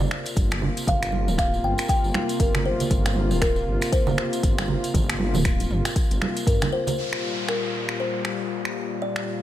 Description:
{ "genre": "afro house", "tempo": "118 BPM", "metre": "4/4", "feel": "swing 59% on 16ths", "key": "unclear", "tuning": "A4 = 440 Hz", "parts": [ { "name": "kalimba", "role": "melody", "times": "0.0-9.4 s", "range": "Bb4 to G5", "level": "-28 LUFS", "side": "left 1 dB", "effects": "dub echo" }, { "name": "warm analog pad", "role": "sustained chords", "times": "0.0-9.4 s", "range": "Bb2 to F4", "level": "-29 LUFS", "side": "left 2 dB", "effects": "chorus, sidechain pumping" }, { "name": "dark detuned saw bass", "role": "bass", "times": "0.0-6.6 s", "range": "D1 to G2", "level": "-27 LUFS", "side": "equal", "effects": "sidechain pumping" }, { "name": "congas", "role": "percussion", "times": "0.0-7.0 s", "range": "none", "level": "-29 LUFS", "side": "right 5 dB", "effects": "none" }, { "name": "tambourine", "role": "percussion", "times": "0.0-7.0 s", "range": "none", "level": "-38 LUFS", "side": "right 2 dB", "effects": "none" }, { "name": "deep house drum kit", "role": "drums", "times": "0.1-9.2 s", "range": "finger snaps, hi-hat, toms", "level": "-30 LUFS", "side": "right 1 dB", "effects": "overdrive, small room ambience" }, { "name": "electronic kick drum", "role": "drums", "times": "0.4-6.6 s", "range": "none", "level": "-23 LUFS", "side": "equal", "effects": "overdrive, small room ambience" }, { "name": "downlifter", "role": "sound effects", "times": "7.0-9.4 s", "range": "none", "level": "-32 LUFS", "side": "equal", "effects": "none" } ], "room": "light reverb", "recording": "none", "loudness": "-21 LUFS", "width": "side -12 dB against mid", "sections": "0.0-7.0 A section; 7.0-9.4 B section", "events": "none", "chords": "0.0 Fsus4; 7.0 Gm7" }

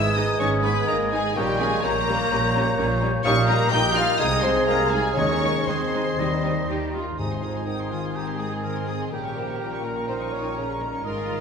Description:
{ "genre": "classical", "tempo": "118-129 BPM", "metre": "4/4", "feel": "rubato", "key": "Ab major from 3.2 s", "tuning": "A4 = 440 Hz", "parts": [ { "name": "warm symphonic violin section", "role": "melody", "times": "0.0-11.4 s", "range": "G5 to G6", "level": "-29 LUFS", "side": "left 3 dB", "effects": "none" }, { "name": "mellow clarinet", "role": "second line", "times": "0.0-11.4 s", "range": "Eb4 to F5", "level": "-33 LUFS", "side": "equal", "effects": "none" }, { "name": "mellow concert flute", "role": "second line", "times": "0.0-11.4 s", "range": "G5 to Bb6", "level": "-32 LUFS", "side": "left 2 dB", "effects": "none" }, { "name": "warm cor anglais", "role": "second line", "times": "0.0-11.4 s", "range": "Eb4 to Eb5", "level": "-32 LUFS", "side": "right 2 dB", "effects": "none" }, { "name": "warm symphonic violin section", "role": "second line", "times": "0.0-11.4 s", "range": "Eb4 to G5", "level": "-32 LUFS", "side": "left 2 dB", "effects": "none" }, { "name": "dark bassoon", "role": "accompaniment", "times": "0.0-11.4 s", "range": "Bb2 to Bb3", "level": "-31 LUFS", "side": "right 3 dB", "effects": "none" }, { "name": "warm French horn section", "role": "sustained chords", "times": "0.0-11.4 s", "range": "G3 to G4", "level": "-30 LUFS", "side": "left 2 dB", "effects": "none" }, { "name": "concert harp", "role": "arpeggios", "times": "0.0-11.4 s", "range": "G#2 to Db5", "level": "-33 LUFS", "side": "left 7 dB", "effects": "none" }, { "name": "rich symphonic cello section", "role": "bass", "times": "0.0-11.4 s", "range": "G#2 to Eb3", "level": "-30 LUFS", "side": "right 3 dB", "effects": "none" }, { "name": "warm studio double bass section", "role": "bass", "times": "0.0-11.4 s", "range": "G#1 to Eb2", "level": "-31 LUFS", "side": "right 3 dB", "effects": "none" }, { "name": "rich symphonic viola section", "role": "accompaniment", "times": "0.2-11.4 s", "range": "G3 to F4", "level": "-32 LUFS", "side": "equal", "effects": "none" }, { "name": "timpani", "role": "percussion", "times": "5.2-7.9 s", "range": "Ab2 to Eb3", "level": "-33 LUFS", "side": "equal", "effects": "none" }, { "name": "clear trumpet", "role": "stabs", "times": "7.2-11.4 s", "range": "Ab4 to Eb5", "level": "-34 LUFS", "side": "right 3 dB", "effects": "none" } ], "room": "wet scoring stage reverb, RT60 1.6 s", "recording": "minimal, uncompressed stereo recording", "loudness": "-21 LUFS", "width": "side -6 dB against mid", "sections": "0.0-7.2 A section; 7.2-11.4 B section", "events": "none", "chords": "0.0 G#m; 1.4 Gdim/Bb; 3.2 Eb7/Bb; 4.2 Ab/C; 5.2 Ab/Eb; 6.2 Eb; 7.2 Ab; 9.1 Gdim/Bb" }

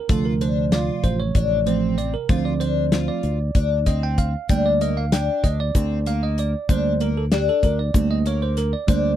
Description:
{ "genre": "progressive instrumental, band music in an uneven meter", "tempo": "191 BPM (eighths)", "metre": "7/8", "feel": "straight", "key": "D phrygian", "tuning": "A4 = 439 Hz", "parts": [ { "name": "bell-like tine electric piano", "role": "accompaniment", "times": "0.0-9.2 s", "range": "C3 to G5", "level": "-25 LUFS", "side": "right 8 dB", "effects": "none" }, { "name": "picked twelve-string acoustic guitar", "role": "arpeggios", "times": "0.1-9.1 s", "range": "Bb3 to F4", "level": "-25 LUFS", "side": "left 7 dB", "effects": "wide subtle chorus" }, { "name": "fingered electric bass", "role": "bass", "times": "0.1-9.2 s", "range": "A1 to D2", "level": "-23 LUFS", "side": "equal", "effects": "none" }, { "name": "damped 70s drum kit", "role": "drums", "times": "0.1-9.0 s", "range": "hi-hat, kick drum, snare drum", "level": "-20 LUFS", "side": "left 1 dB", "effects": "none" }, { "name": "egg shaker", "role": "percussion", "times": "4.5-9.2 s", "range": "none", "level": "-41 LUFS", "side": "right 8 dB", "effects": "none" } ], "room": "little or no reverb", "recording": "dry, close 1970s-style studio recording", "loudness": "-18 LUFS", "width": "side -11 dB against mid", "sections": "0.0-9.2 A section", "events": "tine electric piano solo 0.0-9.2", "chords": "0.0 Dm7; 4.5 Gmadd9/D" }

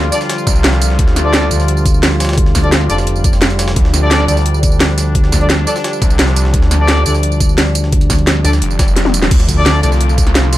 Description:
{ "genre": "dark technical drum and bass", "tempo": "173 BPM", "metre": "4/4", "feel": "straight", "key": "D minor", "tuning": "A4 = 438 Hz", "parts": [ { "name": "sweeping resonant pad", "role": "sustained chords", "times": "0.0-10.6 s", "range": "D3 to F4", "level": "-20 LUFS", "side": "equal", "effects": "chorus, sidechain pumping" }, { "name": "growling FM bass", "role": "bass", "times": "0.0-9.8 s", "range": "F1 to D2", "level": "-15 LUFS", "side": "equal", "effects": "none" }, { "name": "drum and bass drum kit", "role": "drums", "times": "0.0-10.6 s", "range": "crash cymbal, hi-hat, snare drum, tambourine, toms", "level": "-16 LUFS", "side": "right 1 dB", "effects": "none" }, { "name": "mellow brass ensemble", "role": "stabs", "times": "0.1-9.9 s", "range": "D4 to D5", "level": "-20 LUFS", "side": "left 2 dB", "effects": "ping-pong delay" }, { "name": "jungle sampler-style drum kit", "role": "drums", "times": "0.1-10.6 s", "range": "hi-hat, snare drum", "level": "-25 LUFS", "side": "equal", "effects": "none" }, { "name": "snarling distorted saw bass", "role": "bass", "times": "0.5-1.5, 3.8-10.6 s", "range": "F1 to D2", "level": "-14 LUFS", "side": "equal", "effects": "distortion, overdrive, sidechain pumping" }, { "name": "electronic kick drum", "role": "drums", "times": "0.5-10.2 s", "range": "none", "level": "-13 LUFS", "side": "equal", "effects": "overdrive" } ], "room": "digital ambience", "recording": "none", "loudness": "-10 LUFS", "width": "side -15 dB against mid", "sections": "0.0-9.3 A section; 9.3-10.6 A section", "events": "drop 0.0-9.3, 9.3-10.6; drum fill 9.0-9.3", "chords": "0.0 Dm" }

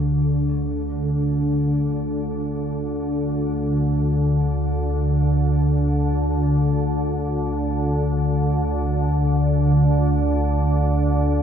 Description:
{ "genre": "dark ambient drone", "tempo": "free time", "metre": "none", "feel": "none", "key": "unclear", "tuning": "A4 = 435 Hz", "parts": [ { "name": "deep dark ambient pad", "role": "sustained chords", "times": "0.5-11.4 s", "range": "D4 to D5", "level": "-29 LUFS", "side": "right 4 dB", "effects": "chorus, built-in reverb" }, { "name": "gamelan-type bronze metallophone", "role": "arpeggios", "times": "0.0-1.9 s", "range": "A3 to G4", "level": "-54 LUFS", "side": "right 1 dB", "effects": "none" }, { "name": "organ-like drone", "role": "drone", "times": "0.0-11.4 s", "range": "D2 to D3", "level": "-19 LUFS", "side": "equal", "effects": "ensemble chorus, built-in reverb" } ], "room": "moderate huge ambient reverb, RT60 7.5 s", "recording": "none", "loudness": "-19 LUFS", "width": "side -8 dB against mid", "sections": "0.0-11.4 A section", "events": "fade-in on ambient pad 0.0-11.4; filter sweep on synth drone 0.0-11.4", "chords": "0.0 D5" }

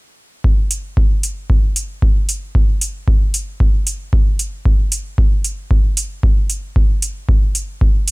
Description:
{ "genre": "dub techno", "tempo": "114 BPM", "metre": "4/4", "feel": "straight", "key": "none", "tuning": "none", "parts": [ { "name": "electronic kick drum", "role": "drums", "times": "0.4-7.9 s", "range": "none", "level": "-14 LUFS", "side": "equal", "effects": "none" }, { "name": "electronic hi-hat", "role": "drums", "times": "0.7-8.1 s", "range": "none", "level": "-20 LUFS", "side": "right 2 dB", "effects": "none" } ], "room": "little or no reverb", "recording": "none", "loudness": "-14 LUFS", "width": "side -24 dB against mid", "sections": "0.4-8.1 A section", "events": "none", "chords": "none" }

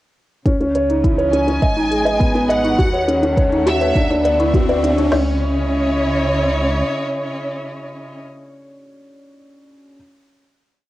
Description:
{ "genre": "piano and strings electronica", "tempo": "103 BPM", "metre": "4/4", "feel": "straight", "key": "C# minor", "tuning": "A4 = 443 Hz", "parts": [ { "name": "dark string quartet", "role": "sustained chords", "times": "0.5-8.2 s", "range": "C#3 to F#5", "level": "-25 LUFS", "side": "equal", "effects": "sidechain pumping, cassette tape" }, { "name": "felt-muted upright piano", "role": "riff", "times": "0.5-10.0 s", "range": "B3 to D#5", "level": "-18 LUFS", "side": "equal", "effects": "cassette tape" }, { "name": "dark detuned saw bass", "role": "bass", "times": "0.5-6.8 s", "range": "C#2", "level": "-24 LUFS", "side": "equal", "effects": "sidechain pumping" }, { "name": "electronic hi-hat", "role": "drums", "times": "0.5-5.1 s", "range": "none", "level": "-40 LUFS", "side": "left 1 dB", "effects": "cassette tape" }, { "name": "organic electronic drum kit", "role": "drums", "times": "0.5-5.3 s", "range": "crash cymbal, kick drum, snare drum", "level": "-18 LUFS", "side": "equal", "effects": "cassette tape" }, { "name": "riser", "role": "sound effects", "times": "2.1-5.1 s", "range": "none", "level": "-28 LUFS", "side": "equal", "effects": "none" }, { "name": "soft round pluck", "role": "arpeggios", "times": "0.6-5.4 s", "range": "B4 to C#6", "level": "-30 LUFS", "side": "left 7 dB", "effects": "none" }, { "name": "rich studio violin section", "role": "melody", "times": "1.3-8.2 s", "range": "C#5 to G#5", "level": "-24 LUFS", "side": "equal", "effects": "cassette tape" } ], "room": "light reverb", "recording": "home recording on cassette", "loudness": "-15 LUFS", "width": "side -16 dB against mid", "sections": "0.5-5.1 build; 5.1-7.5 final chord", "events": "build-up 0.5-5.1; riser 2.1-5.1", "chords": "0.5 C#madd9; 1.6 G#m; 2.8 D#m7b5; 4.0 Dadd9; 5.1 C#madd9" }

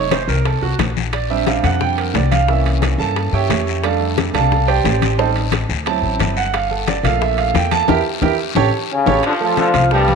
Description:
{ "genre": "latin, salsa", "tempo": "178 BPM", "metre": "4/4", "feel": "straight", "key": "unclear", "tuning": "A4 = 440 Hz", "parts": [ { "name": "bright concert grand piano", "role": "accompaniment", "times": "0.0-10.2 s", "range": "E3 to F6", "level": "-18 LUFS", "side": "right 9 dB", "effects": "none" }, { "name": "upright bass", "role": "bass", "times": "0.0-10.2 s", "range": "F1 to G2", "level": "-19 LUFS", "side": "left 2 dB", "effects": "none" }, { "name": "bongos", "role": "percussion", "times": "0.1-10.1 s", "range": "none", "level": "-28 LUFS", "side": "left 13 dB", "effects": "none" }, { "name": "congas", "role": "percussion", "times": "0.1-10.2 s", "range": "none", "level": "-25 LUFS", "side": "left 14 dB", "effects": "none" }, { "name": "guiro", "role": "percussion", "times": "0.1-10.2 s", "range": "none", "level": "-29 LUFS", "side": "left 13 dB", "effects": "none" }, { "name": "timbales", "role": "percussion", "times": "0.1-10.2 s", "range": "none", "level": "-27 LUFS", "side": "right 9 dB", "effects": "none" }, { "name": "warm trombone section", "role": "melody", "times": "8.9-10.2 s", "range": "G2 to F4", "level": "-16 LUFS", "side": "left 3 dB", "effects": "none" }, { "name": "edgy saxophone section", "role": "second line", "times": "9.2-10.1 s", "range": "D3 to F3", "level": "-22 LUFS", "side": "equal", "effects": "none" } ], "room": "moderate echo chamber reverb, RT60 2.3 s", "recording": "1960s-style stereo with parts hard left and right", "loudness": "-14 LUFS", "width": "side -5 dB against mid", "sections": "0.0-9.2 A section", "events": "grand piano solo 0.0-9.2; band accent 7.9-9.2; drum fill 8.4-9.2", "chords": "0.0 F; 1.1 Bb69; 2.5 C7b9; 3.8 F69; 5.2 Am7b5; 5.9 D7; 6.5 Gm7; 7.9 Edim; 8.6 A7; 9.2 F69" }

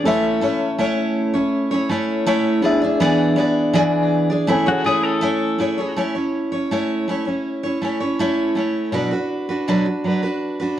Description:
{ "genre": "acoustic pop", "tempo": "81 BPM", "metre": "4/4", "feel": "straight", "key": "A major", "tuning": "A4 = 440 Hz", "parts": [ { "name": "twelve-string electric guitar", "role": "second line", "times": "0.0, 4.7-5.9 s", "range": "F#4 to A4", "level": "-23 LUFS", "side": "left 3 dB", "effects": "spring reverb" }, { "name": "mellow reed electric piano", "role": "accompaniment", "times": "0.0-6.0 s", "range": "C4 to G#5", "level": "-23 LUFS", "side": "left 2 dB", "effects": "fast tremolo" }, { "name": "picked steel-string acoustic guitar", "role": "accompaniment", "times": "0.0-10.8 s", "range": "B2 to D5", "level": "-18 LUFS", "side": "right 1 dB", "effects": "none" } ], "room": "light reverb", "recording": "worn, warbling old tape, cassette tape, warbly pitch drift", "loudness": "-17 LUFS", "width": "side -11 dB against mid", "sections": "0.0-6.0 A section; 6.0-10.8 B section", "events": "none", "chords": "0.1 A; 2.6 E7; 4.5 Amaj7; 6.0 A; 8.9 Bm" }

